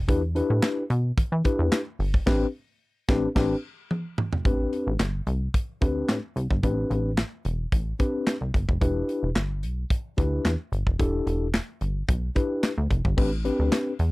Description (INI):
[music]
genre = early-eighties boogie funk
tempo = 110 BPM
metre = 4/4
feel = straight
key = A minor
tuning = A4 = 440 Hz
[part]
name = plucky analog bass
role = bass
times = 0.0-14.1 s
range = E1 to E3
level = -26 LUFS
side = equal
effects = none
[part]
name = mellow tine electric piano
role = accompaniment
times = 0.1-13.9 s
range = C4 to B4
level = -26 LUFS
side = left 2 dB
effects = medium stereo tremolo
[part]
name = modern studio drum kit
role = drums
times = 0.1-14.1 s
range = crash cymbal, handclaps, hi-hat, kick drum, snare drum, toms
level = -24 LUFS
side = equal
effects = none
[sound]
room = little or no reverb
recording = dry, close 1970s-style studio recording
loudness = -23 LUFS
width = side -22 dB against mid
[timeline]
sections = 0.0-4.5 A section; 4.5-13.2 B section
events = band accent 2.3-4.5; drum fill 3.9-4.5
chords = 0.1 Em7; 2.3 Am11; 8.8 Em7; 13.2 Am11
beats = | 0.09 0.63 1.18 1.72 | 2.27 2.81 3.36 3.91 | 4.45 5.00 5.54 6.09 | 6.63 7.18 7.72 8.27 | 8.81 9.36 9.91 10.45 | 11.00 11.54 12.09 12.63 | 13.18 13.72